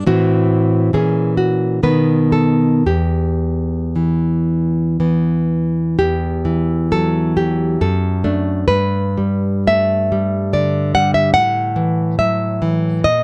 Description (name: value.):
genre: romantic piece for solo classical guitar.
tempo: 52-74 BPM.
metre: 3/4.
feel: rubato.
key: E minor.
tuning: A4 = 439 Hz.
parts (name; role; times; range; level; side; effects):
nylon-string guitar; solo; 0.0-13.2 s; E2 to F#5; -17 LUFS; equal; none.
room: moderate small room reverb, RT60 0.6 s.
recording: dark, warm production.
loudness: -17 LUFS.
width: mono.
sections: 0.0-6.0 A section; 6.0-13.2 A section.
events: none.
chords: 0.1 Am; 0.9 F#7/A#; 1.8 B7; 2.9 Em; 7.8 D/F#; 8.7 G; 11.4 A5.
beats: | 0.08 0.95 1.84 | 2.87 3.97 5.00 | 6.00 6.94 7.82 | 8.69 9.68 10.54 | 11.36 12.19 13.06.